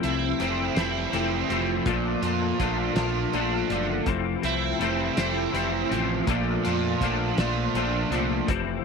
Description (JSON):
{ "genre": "indie rock", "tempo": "54 BPM (dotted quarters)", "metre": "6/8", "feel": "straight", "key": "unclear", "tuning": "A4 = 445 Hz", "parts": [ { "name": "crunchy overdriven guitar", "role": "riff", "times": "0.0-8.5 s", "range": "Bb2 to F4", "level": "-27 LUFS", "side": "right 13 dB", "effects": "ensemble chorus" }, { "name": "twelve-string electric guitar", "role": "riff", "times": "0.0-8.8 s", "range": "F2 to D4", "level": "-27 LUFS", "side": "left 12 dB", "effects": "ensemble chorus" }, { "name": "growling fingered electric bass", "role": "bass", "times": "0.0-8.8 s", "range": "F1 to F2", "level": "-31 LUFS", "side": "right 1 dB", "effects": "overdrive" }, { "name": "cloth-damped thuddy drum kit", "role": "drums", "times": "0.0-8.7 s", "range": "hi-hat, kick drum, snare drum", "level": "-30 LUFS", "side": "right 1 dB", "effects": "none" } ], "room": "light reverb, studio ambience", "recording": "1960s-style stereo with parts hard left and right", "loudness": "-23 LUFS", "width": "side -5 dB against mid", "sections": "0.0-8.8 A section", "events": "none", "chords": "0.0 Fmaj7; 1.9 Bbmaj7; 4.1 Fmaj7; 6.3 Bbmaj7" }